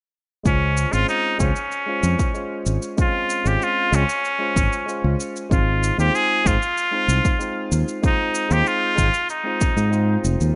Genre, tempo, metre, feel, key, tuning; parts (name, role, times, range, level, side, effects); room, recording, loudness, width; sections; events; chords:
sunset chillout; 95 BPM; 4/4; straight; Ab major; A4 = 442 Hz
barky tine electric piano; accompaniment; 0.4-10.5 s; Ab3 to C5; -30 LUFS; equal; overdrive, low-pass filter, tape echo
trumpet with straight mute; melody; 0.5-10.2 s; Db4 to Ab4; -24 LUFS; equal; tape echo
fingered electric bass; bass; 0.5-10.5 s; F1 to Ab2; -22 LUFS; equal; tube saturation
cabasa; drums; 0.5-10.5 s; -35 LUFS; equal; small room ambience
electronic kick drum; drums; 0.5-9.7 s; -23 LUFS; equal; overdrive, small room ambience
light reverb; rough home demo mix, nothing above 10.4 kHz; -20 LUFS; mono
0.5-10.6 A section
filter sweep on tine electric piano 0.5-10.6
0.5 Dbmaj7; 5.5 Ab6